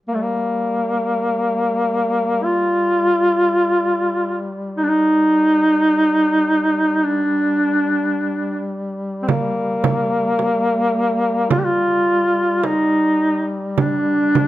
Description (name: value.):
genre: caucasian folk, Caucasian lament.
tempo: 52 BPM.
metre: 4/4.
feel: rubato.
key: G minor.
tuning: A4 = 440 Hz.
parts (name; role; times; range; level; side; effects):
mellow duduk; melody; 0.1-14.5 s; A3 to G4; -16 LUFS; equal; none.
warm duduk; drone; 0.1-14.5 s; G3; -27 LUFS; left 2 dB; none.
frame drum; percussion; 9.3-14.5 s; none; -21 LUFS; right 5 dB; none.
room: moderate recital hall reverb, RT60 1.7 s.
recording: none.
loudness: -16 LUFS.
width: side -15 dB against mid.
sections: 0.0-14.5 A section.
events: none.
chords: none.